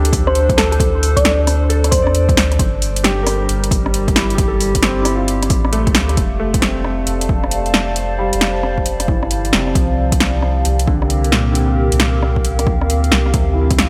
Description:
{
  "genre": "future garage",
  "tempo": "134 BPM",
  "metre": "4/4",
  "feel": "swing 64% on 16ths",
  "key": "unclear",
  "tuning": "A4 = 440 Hz",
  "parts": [
    { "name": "felt-muted upright piano", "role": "accompaniment", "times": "0.0-13.9 s", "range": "Bb2 to D5", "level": "-25 LUFS", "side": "equal", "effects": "vintage 12-bit sampler grit, sidechain pumping, delay" },
    { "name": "warbly tape-like pad", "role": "sustained chords", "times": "0.0-13.9 s", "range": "G3 to A5", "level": "-25 LUFS", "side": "equal", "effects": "chorus, built-in reverb, sidechain pumping" },
    { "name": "soft dub sub bass", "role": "bass", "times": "0.0-13.9 s", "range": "F1 to E2", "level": "-20 LUFS", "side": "equal", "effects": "tube saturation, sidechain pumping" },
    { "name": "deep house drum kit", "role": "drums", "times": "0.1-13.9 s", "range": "hi-hat, rim click, snare drum", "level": "-21 LUFS", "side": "equal", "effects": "overdrive, studio reverb" },
    { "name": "electronic kick drum", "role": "drums", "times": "0.1-13.8 s", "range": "none", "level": "-21 LUFS", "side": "equal", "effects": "overdrive, studio reverb" },
    { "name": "thumb-piano-like synth pluck", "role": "melody", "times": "0.3-2.3 s", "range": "A4 to D5", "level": "-22 LUFS", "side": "equal", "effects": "chorus, dub echo" }
  ],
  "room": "light reverb, digital ambience",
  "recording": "none",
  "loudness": "-16 LUFS",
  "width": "mono",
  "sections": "0.0-6.2 A section; 6.2-13.9 B section",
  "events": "none",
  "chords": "0.0 D5; 2.6 Gm7; 6.2 F6; 9.8 C7sus4; 13.3 Dm7",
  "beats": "0.36 | 0.80 1.25 1.70 2.15 | 2.60 3.04 3.49 3.94 | 4.39 4.83 5.28 5.73 | 6.18 6.62 7.07 7.52 | 7.97 8.42 8.86 9.31 | 9.76 10.21 10.65 11.10 | 11.55 12.00 12.45 12.89 | 13.34 13.79"
}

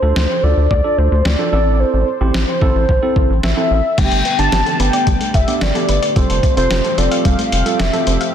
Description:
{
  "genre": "synth-pop",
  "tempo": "110 BPM",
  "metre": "4/4",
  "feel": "straight",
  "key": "unclear",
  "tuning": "A4 = 440 Hz",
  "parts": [
    { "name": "warm velvety synth lead", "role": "melody", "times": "0.0-8.3 s", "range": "C5 to A5", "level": "-18 LUFS", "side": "left 1 dB", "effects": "chorus, tape echo" },
    { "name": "tine electric piano", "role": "accompaniment", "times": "0.0-8.2 s", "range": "B3 to A4", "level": "-22 LUFS", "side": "right 6 dB", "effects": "none" },
    { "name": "rubbery square bass", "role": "bass", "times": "0.0-8.2 s", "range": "F1 to D2", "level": "-17 LUFS", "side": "equal", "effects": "none" },
    { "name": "lo-fi sampler-style drum kit", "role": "drums", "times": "0.2-8.3 s", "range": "crash cymbal, hi-hat, kick drum, snare drum", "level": "-18 LUFS", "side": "left 1 dB", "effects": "none" },
    { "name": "chorused pulse-width pad", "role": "sustained chords", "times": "4.0-8.3 s", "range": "D3 to G4", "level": "-25 LUFS", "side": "equal", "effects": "none" },
    { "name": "soft round pluck", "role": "arpeggios", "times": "4.0-8.3 s", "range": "G3 to F5", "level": "-26 LUFS", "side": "left 3 dB", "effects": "chorus, tape echo" }
  ],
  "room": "moderate lush hall reverb, RT60 2.1 s",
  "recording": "dense, heavily limited modern master",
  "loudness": "-13 LUFS",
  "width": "side -9 dB against mid",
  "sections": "0.0-4.0 A section; 4.0-8.3 B section",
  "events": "none",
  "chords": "0.0 Dm; 1.5 Am; 4.0 Gadd9; 6.2 Fadd9",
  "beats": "0.16 0.71 1.25 | 1.80 2.34 2.89 3.43 | 3.98 4.53 5.07 5.62 | 6.16 6.71 7.25 7.80 | 8.34"
}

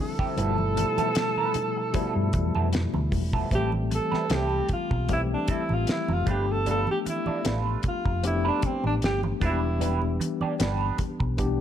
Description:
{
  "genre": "lush 1970s-style soul",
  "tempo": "76 BPM",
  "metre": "4/4",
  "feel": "swing 54% on 16ths",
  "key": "A minor",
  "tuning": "A4 = 440 Hz",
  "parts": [
    { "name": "warm alto saxophone", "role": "melody", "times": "0.0-10.2 s", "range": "C4 to A4", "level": "-29 LUFS", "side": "right 1 dB", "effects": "none" },
    { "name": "tine electric piano", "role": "accompaniment", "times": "0.0-11.6 s", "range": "B2 to G4", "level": "-30 LUFS", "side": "left 5 dB", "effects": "medium stereo tremolo" },
    { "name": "electric guitar through a small old amp", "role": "riff", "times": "0.2-11.4 s", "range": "F3 to D5", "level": "-33 LUFS", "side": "right 8 dB", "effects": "wah" },
    { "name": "damped 70s drum kit", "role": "drums", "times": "0.2-11.6 s", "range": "hi-hat, kick drum, snare drum", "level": "-29 LUFS", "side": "equal", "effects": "none" },
    { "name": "hollow-body short-scale fingered electric bass", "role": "bass", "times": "0.4-11.6 s", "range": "E1 to G2", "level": "-28 LUFS", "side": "equal", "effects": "none" },
    { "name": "congas", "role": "percussion", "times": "0.4-11.6 s", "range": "none", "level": "-36 LUFS", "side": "right 5 dB", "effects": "none" }
  ],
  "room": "light reverb, small room ambience",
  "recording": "none",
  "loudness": "-23 LUFS",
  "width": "side -10 dB against mid",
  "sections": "0.0-3.5 A section; 3.5-11.6 B section",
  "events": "alto saxophone solo 3.5-11.6",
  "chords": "0.4 G13; 3.5 Am7; 6.3 G9; 9.4 Em7",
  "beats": "| 0.37 1.16 1.95 2.73 | 3.52 4.31 5.09 5.88 | 6.67 7.45 8.24 9.03 | 9.81 10.60 11.39"
}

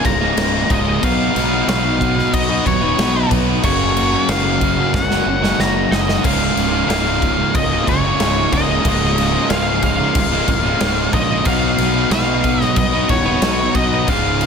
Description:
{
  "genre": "quiet-loud alternative rock",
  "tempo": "92 BPM",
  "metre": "4/4",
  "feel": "straight",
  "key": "unclear",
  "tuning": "A4 = 440 Hz",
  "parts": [
    { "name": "octave-fuzz lead guitar", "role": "melody", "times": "0.0-14.5 s", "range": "Db5 to Bb5", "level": "-20 LUFS", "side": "equal", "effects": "distortion" },
    { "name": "fuzz guitar", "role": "riff", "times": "0.0-14.5 s", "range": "Db2 to Cb5", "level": "-21 LUFS", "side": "left 14 dB", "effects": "distortion" },
    { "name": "thick fuzz guitar", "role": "riff", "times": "0.0-14.5 s", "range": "Db2 to Cb5", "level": "-20 LUFS", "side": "right 13 dB", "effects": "distortion" },
    { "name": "fuzz fingered electric bass", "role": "bass", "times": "0.0-14.5 s", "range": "Db1 to Cb2", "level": "-22 LUFS", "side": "equal", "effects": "overdrive" },
    { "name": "big rock drum kit", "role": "drums", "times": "0.0-14.5 s", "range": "crash cymbal, kick drum, snare drum", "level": "-20 LUFS", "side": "equal", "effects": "none" }
  ],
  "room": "moderate small room reverb, RT60 0.6 s",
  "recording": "none",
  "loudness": "-14 LUFS",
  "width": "side -6 dB against mid",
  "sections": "0.0-14.5 A section",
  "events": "drum fill 4.9-6.2",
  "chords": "0.0 Db6; 1.0 Cb; 3.6 Gb; 6.2 Db6; 11.5 Cb",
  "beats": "0.38 | 1.03 1.68 2.34 2.99 | 3.64 4.29 4.94 5.59 | 6.25 6.90 7.55 8.20 | 8.85 9.50 10.15 10.81 | 11.46 12.12 12.77 13.43 | 14.08"
}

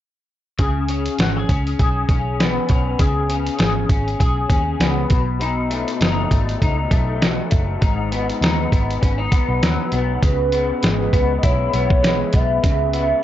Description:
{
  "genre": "indie pop, bedroom pop",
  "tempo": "100 BPM",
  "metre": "4/4",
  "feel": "swing 55% on 16ths",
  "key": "C# minor",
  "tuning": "A4 = 442 Hz",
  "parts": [
    { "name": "electric guitar through a small old amp", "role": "accompaniment", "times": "0.6-13.2 s", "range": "G#2 to G#4", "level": "-22 LUFS", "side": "left 4 dB", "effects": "ensemble chorus, warbly pitch drift" },
    { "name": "vintage muted picked electric bass", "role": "bass", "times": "0.6-13.1 s", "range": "F#1 to D#2", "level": "-23 LUFS", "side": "equal", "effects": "none" },
    { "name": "dusty soul sampler-style drum kit", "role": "drums", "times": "0.6-13.1 s", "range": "hi-hat, kick drum, snare drum", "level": "-18 LUFS", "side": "equal", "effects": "none" },
    { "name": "hollow clarinet-like synth lead", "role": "melody", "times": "10.2-13.2 s", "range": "B4 to E5", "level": "-21 LUFS", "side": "right 2 dB", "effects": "wide subtle chorus" }
  ],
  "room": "light reverb",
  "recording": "cassette tape, nothing above 7.5 kHz",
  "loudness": "-16 LUFS",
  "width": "side -12 dB against mid",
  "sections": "0.6-10.2 A section; 10.2-13.2 B section",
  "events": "none",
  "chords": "0.6 C#5; 5.1 B7; 7.8 G#m7; 10.2 C#m7",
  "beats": "| 0.60 1.20 1.80 2.40 | 3.01 3.61 4.21 4.81 | 5.42 6.02 6.62 7.22 | 7.82 8.43 9.03 9.63 | 10.23 10.83 11.44 12.04 | 12.64"
}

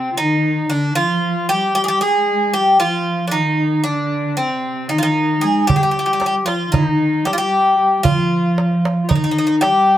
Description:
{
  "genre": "Turkish makam ensemble",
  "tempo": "229 BPM (eighths)",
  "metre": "9/8",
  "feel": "straight",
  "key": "unclear",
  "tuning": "A4 = 437 Hz",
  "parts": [
    { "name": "Greek bouzouki", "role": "melody", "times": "0.0-10.0 s", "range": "C4 to Ab4", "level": "-18 LUFS", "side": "equal", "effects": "none" },
    { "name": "bright clarinet", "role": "second line", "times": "0.0-10.0 s", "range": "C4 to Ab4", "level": "-20 LUFS", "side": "left 3 dB", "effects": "none" },
    { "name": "dark studio cello section", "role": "second line", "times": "0.0-10.0 s", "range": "C3 to Ab3", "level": "-21 LUFS", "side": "right 1 dB", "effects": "none" },
    { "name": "darbuka", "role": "percussion", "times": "5.7-10.0 s", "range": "none", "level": "-19 LUFS", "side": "right 4 dB", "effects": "none" }
  ],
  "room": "moderate studio reverb, RT60 0.6 s",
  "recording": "band playing live in one room",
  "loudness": "-14 LUFS",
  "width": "side -12 dB against mid",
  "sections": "0.0-10.0 A section",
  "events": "none",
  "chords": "none",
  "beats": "0.19 0.45 0.71 | 0.97 1.24 1.50 1.76 2.02 2.28 2.55 2.81 3.07 | 3.33 3.59 3.86 4.12 4.38 4.64 4.91 5.17 5.43 | 5.69 5.95 6.21 6.48 6.74 7.00 7.26 7.53 7.79 | 8.05 8.31 8.57 8.84 9.10 9.36 9.62 9.88"
}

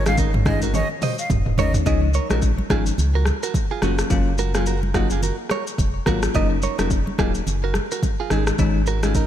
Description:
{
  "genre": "afrobeats",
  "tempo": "107 BPM",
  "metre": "4/4",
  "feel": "swing 58% on 16ths",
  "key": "Db major",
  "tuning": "A4 = 440 Hz",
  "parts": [
    { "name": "breathy jazz flute", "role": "melody", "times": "0.0-1.7 s", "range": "Eb5 to F5", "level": "-28 LUFS", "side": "equal", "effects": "ping-pong delay" },
    { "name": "direct-recorded clean electric guitar", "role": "riff", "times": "0.0-9.3 s", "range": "Db4 to Eb5", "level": "-28 LUFS", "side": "right 8 dB", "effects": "ping-pong delay" },
    { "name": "sub bass with octave", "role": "bass", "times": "0.0-9.3 s", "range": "Eb1 to Db2", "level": "-22 LUFS", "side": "equal", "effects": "none" },
    { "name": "bell-like FM electric piano", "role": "accompaniment", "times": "0.1-9.2 s", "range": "Eb3 to F4", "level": "-26 LUFS", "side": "left 5 dB", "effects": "chorus" },
    { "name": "deep house drum kit", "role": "drums", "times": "0.1-9.3 s", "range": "hi-hat, kick drum, rim click, shaker, toms", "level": "-23 LUFS", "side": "equal", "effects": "gated reverb" },
    { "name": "congas", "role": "percussion", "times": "0.1-9.1 s", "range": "none", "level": "-31 LUFS", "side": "right 3 dB", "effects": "none" }
  ],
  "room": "light reverb, digital ambience",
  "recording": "bright 1980s-style digital production",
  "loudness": "-18 LUFS",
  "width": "side -11 dB against mid",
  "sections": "0.0-1.9 A section; 1.9-9.3 B section",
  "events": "drum fill 0.7-1.9",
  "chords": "0.0 Absus4; 1.9 Dbadd9; 3.8 Gbmaj7; 6.3 Ebm7; 8.3 Absus4",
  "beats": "0.18 0.74 1.30 | 1.86 2.42 2.98 3.54 | 4.10 4.66 5.22 5.79 | 6.35 6.91 7.47 8.03 | 8.59 9.15"
}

